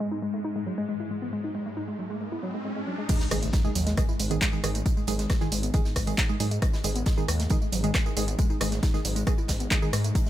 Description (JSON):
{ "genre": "driving peak-time techno", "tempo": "136 BPM", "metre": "4/4", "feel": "straight", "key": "unclear", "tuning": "A4 = 441 Hz", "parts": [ { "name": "woody wave-folded pluck", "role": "riff", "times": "0.0-10.3 s", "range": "F#3 to E4", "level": "-33 LUFS", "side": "left 2 dB", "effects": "chorus, tube saturation, sidechain pumping, dub echo" }, { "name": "swarming drone", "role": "drone", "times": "0.0-10.3 s", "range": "G#2 to G#3", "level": "-38 LUFS", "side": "left 1 dB", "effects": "built-in reverb, sidechain pumping" }, { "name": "riser and impact", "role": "sound effects", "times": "0.9-4.9 s", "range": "none", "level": "-38 LUFS", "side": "equal", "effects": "none" }, { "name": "electronic kick drum", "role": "drums", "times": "3.1-10.2 s", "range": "none", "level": "-25 LUFS", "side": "equal", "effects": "none" }, { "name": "huge arena drum kit", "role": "drums", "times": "3.1-10.3 s", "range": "hi-hat, snare drum", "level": "-42 LUFS", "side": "right 2 dB", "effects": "none" }, { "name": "punchy analog drum machine", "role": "drums", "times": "3.1-10.3 s", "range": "crash cymbal, handclaps, hi-hat, rim click, tambourine", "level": "-31 LUFS", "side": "right 1 dB", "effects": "none" }, { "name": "wavetable chord stab", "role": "stabs", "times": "3.3-9.9 s", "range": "D#3 to G#4", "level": "-33 LUFS", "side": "right 4 dB", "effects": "cassette tape, sidechain pumping, ping-pong delay" }, { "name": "gritty driven synth bass", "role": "bass", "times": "3.3-10.1 s", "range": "G#1 to G#2", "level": "-28 LUFS", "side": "equal", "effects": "distortion, sidechain pumping" } ], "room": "digital ambience", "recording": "low-pass filter", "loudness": "-24 LUFS", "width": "side -13 dB against mid", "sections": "0.0-3.1 A section; 3.1-10.3 B section", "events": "filter sweep 0.0-3.1; riser 0.9-3.1; drop 3.1-10.3; impact 3.1-4.9", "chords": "0.0 G#5" }